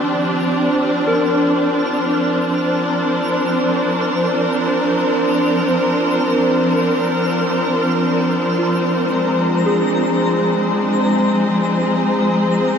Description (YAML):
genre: ambient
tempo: 56 BPM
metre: 4/4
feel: straight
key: unclear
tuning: A4 = 435 Hz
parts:
  - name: rich symphonic string section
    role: sustained chords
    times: 0.0-12.8 s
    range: F3 to C5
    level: -15 LUFS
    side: equal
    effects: none
  - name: soft synth bell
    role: arpeggios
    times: 0.0-12.8 s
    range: F4 to Bb4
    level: -26 LUFS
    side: left 2 dB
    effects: chorus, tremolo, diffuse ambient delay
  - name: twinkling granular texture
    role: texture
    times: 0.0-12.8 s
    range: Bb5 to F6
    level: -28 LUFS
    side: left 1 dB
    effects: built-in reverb
room: wet cathedral reverb, RT60 7.2 s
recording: in a vast, echoing space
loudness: -15 LUFS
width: side -7 dB against mid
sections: 0.0-12.8 A section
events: fade-in on synth texture 0.0-12.8; fade-out on synth bell 0.0-12.8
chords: 0.0 Bbadd9; 8.6 Fm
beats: | 0.02 1.08 2.15 3.21 | 4.28 5.35 6.42 7.50 | 8.59 9.66 10.74 11.81